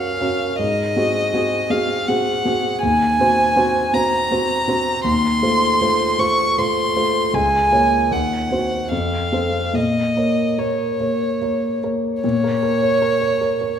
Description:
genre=classical, romantic duo for violin and grand piano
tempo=71-81 BPM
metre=3/4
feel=rubato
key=Bb minor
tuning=A4 = 439 Hz
part: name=dark violin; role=melody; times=0.0-13.8 s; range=Db5 to Db6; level=-19 LUFS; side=equal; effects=none
part: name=warm concert grand piano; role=accompaniment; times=0.0-13.8 s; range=Db2 to Db5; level=-19 LUFS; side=right 1 dB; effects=none
room=wet scoring stage reverb, RT60 1.9 s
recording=minimal, uncompressed stereo recording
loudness=-16 LUFS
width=side -8 dB against mid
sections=0.0-12.2 A section; 12.2-13.8 B section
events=none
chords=0.0 Gb; 0.6 Ab7; 2.8 Cm7b5/Eb; 5.1 F7/Eb; 7.3 Bbm/Db; 8.1 Cdim/Eb; 8.9 F; 9.7 Bbm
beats=| 0.59 1.33 2.08 | 2.83 3.57 4.31 | 5.05 5.82 6.58 | 7.34 8.12 8.92 | 9.75 10.59 11.41 | 12.23 13.02

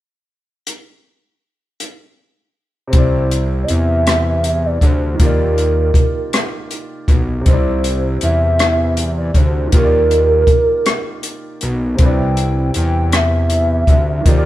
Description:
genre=slow six-eight R&B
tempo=53 BPM (dotted quarters)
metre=6/8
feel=straight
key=C major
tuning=A4 = 440 Hz
part: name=compact cocktail drum kit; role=drums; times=0.7-14.4 s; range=hi-hat, kick drum, rim click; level=-15 LUFS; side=equal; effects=none
part: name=clear baby grand piano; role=accompaniment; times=2.9-14.5 s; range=C3 to D5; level=-23 LUFS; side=equal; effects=none
part: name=fat analog bass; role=bass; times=2.9-14.5 s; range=B1 to E2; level=-17 LUFS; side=equal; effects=none
part: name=hollow clarinet-like synth lead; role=melody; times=3.0-14.5 s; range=Bb4 to G5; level=-18 LUFS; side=right 1 dB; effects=chorus
room=moderate stone room reverb, RT60 1.2 s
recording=band playing live in one room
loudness=-12 LUFS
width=side -14 dB against mid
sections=0.7-2.9 A section; 2.9-14.5 B section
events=none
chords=0.7 N.C.; 2.9 Cadd9; 5.2 Ebmaj9; 7.5 Cadd9; 9.7 Ebmaj9; 12.0 Cmaj9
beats=| 0.67 1.80 | 2.93 4.06 | 5.20 6.33 | 7.46 8.59 | 9.72 10.86 | 11.99 13.12 | 14.25

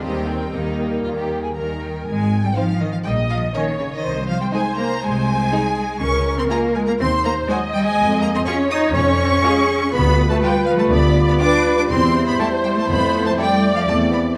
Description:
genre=cinematic, playful, whimsical film cue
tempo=122 BPM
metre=4/4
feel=straight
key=Ab major, C major from 9.9 s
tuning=A4 = 441 Hz
part: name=rich studio violin section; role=melody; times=0.0-14.2 s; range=Db5 to Eb6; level=-26 LUFS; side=equal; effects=none
part: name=rich chamber violin section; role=second line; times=0.0-13.5 s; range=C4 to G5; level=-32 LUFS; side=equal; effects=none
part: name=rich symphonic viola section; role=accompaniment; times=0.0-14.4 s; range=Bb3 to Eb5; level=-25 LUFS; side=equal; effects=none
part: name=mellow French horn section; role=sustained chords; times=0.0-14.4 s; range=Gb3 to Gb4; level=-28 LUFS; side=equal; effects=none
part: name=clear chamber cello section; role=bass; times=0.0-14.2 s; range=Db3 to Eb4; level=-24 LUFS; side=equal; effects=none
part: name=clear chamber double bass section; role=bass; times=0.0-14.3 s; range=Ab1 to F2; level=-24 LUFS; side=equal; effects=none
room=wet scoring stage reverb, RT60 1.7 s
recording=none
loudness=-19 LUFS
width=mono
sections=0.0-2.1 A section; 2.1-14.4 B section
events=none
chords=0.0 Eb; 2.1 Ab; 3.1 Gdim/Bb (rootless); 4.0 Ab/C; 6.0 Db; 7.0 Cdim/Eb; 8.0 Db/F; 9.9 G7/D; 11.9 C/E; 12.9 Fmaj7; 13.9 C/E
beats=| 0.03 0.55 1.05 1.56 | 2.07 2.56 3.06 3.55 | 4.04 4.54 5.03 5.52 | 6.01 6.51 7.00 7.49 | 7.98 8.47 8.96 9.45 | 9.94 10.43 10.92 11.41 | 11.90 12.39 12.89 13.38 | 13.87 14.37

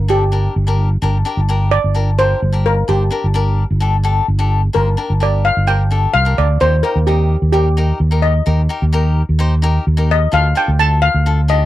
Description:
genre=calypso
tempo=129 BPM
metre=4/4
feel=straight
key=G minor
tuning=A4 = 440 Hz
part: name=steel pan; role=melody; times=0.0-11.7 s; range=G4 to A5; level=-17 LUFS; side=equal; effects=none
part: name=fretless electric bass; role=bass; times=0.0-11.6 s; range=G1 to Eb2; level=-14 LUFS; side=equal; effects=analog chorus
part: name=cavaquinho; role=accompaniment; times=0.1-11.7 s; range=D4 to C5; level=-22 LUFS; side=left 6 dB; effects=none
room=little or no reverb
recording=dry, close 1970s-style studio recording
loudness=-12 LUFS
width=side -14 dB against mid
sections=0.0-11.7 A section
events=steel pan solo 0.0-11.7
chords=0.0 Gm; 6.6 Eb; 10.3 Dm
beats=0.09 0.56 | 1.02 1.49 1.96 2.42 | 2.89 3.35 3.82 4.28 | 4.75 5.21 5.68 6.14 | 6.61 7.07 7.54 8.00 | 8.47 8.93 9.40 9.86 | 10.33 10.79 11.26

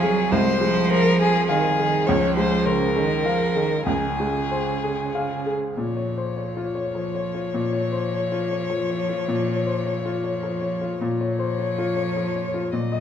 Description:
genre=neoclassical piano and strings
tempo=103 BPM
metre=3/4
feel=rubato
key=Bb minor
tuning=A4 = 440 Hz
part: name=rich violin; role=melody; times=0.0-13.0 s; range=Ab4 to Eb5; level=-26 LUFS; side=left 4 dB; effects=none
part: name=rich cello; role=second line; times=0.0-13.0 s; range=Db3 to Ab3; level=-26 LUFS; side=right 5 dB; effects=none
part: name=warm upright piano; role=accompaniment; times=0.0-13.0 s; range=C2 to F5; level=-24 LUFS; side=left 2 dB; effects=none
room=wet recital hall reverb, RT60 1.6 s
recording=minimal, uncompressed stereo recording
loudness=-20 LUFS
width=side -8 dB against mid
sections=0.0-5.8 A section; 5.8-13.0 B section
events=none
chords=0.0 Fm7/C; 2.1 Dbmaj7; 5.8 Bbm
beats=| 0.32 0.90 1.49 | 2.07 2.65 3.25 | 3.87 4.51 5.14 | 5.76 6.36 6.94 | 7.53 8.11 8.70 | 9.28 9.86 10.44 | 11.02 11.59 12.17 | 12.73

